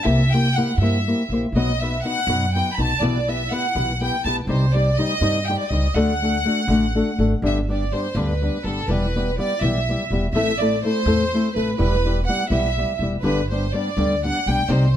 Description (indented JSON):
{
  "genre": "mexican folk, mariachi",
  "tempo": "82 BPM (dotted quarters)",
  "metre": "6/8",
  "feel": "straight",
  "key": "G major",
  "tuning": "A4 = 440 Hz",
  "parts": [
    { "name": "warm studio violin section", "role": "melody", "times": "0.0-15.0 s", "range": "A4 to B5", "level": "-24 LUFS", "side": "right 1 dB", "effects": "none" },
    { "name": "flamenco guitar", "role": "accompaniment", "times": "0.0-15.0 s", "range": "G2 to C5", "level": "-23 LUFS", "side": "left 2 dB", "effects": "none" },
    { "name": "upright bass", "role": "bass", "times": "0.1-15.0 s", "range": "E1 to G2", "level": "-22 LUFS", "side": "right 1 dB", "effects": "none" }
  ],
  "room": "light reverb",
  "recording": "close, detailed microphones",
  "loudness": "-18 LUFS",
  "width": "side -10 dB against mid",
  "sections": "0.0-15.0 A section",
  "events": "none",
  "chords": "0.0 C7; 1.5 B; 3.0 Em/B; 4.5 Cm; 6.0 D; 7.4 G; 8.9 Em; 10.3 Am; 11.8 Em; 13.2 G"
}